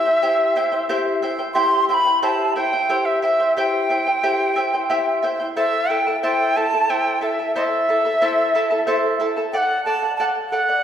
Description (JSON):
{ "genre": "andean folk, Andean ensemble", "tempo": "60 BPM (dotted quarters)", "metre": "6/8", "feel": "straight", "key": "unclear", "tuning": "A4 = 440 Hz", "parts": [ { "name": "bright quena", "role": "melody", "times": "0.0-10.8 s", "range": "E5 to C6", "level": "-19 LUFS", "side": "equal", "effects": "none" }, { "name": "charango", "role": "accompaniment", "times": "0.0-10.8 s", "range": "E4 to A5", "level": "-21 LUFS", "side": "left 1 dB", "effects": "none" } ], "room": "wet recital hall reverb, RT60 1.6 s", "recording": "heard from further back in the room", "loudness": "-17 LUFS", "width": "side -9 dB against mid", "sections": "0.0-10.8 A section", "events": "none", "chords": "0.0 C; 5.5 Am; 9.5 D", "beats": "0.55 | 1.55 2.55 | 3.55 4.55 | 5.55 6.54 | 7.54 8.53 | 9.52 10.52" }